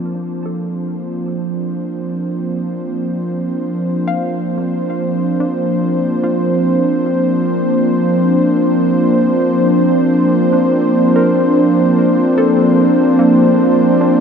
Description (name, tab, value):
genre	ambient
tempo	73 BPM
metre	4/4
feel	straight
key	Bb major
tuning	A4 = 440 Hz
part	warm analog pad	sustained chords	0.0-14.2 s	F3 to C5	-13 LUFS	equal	chorus
part	soft round pluck	arpeggios	0.0-14.2 s	Bb3 to A5	-23 LUFS	left 1 dB	chorus, tape echo
room	wet huge ambient reverb, RT60 8.4 s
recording	none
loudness	-12 LUFS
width	side -7 dB against mid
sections	0.0-14.2 A section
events	fade-in on synth pluck 0.0-14.2; filter sweep on analog synth pad 0.0-14.2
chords	0.0 Bbmaj9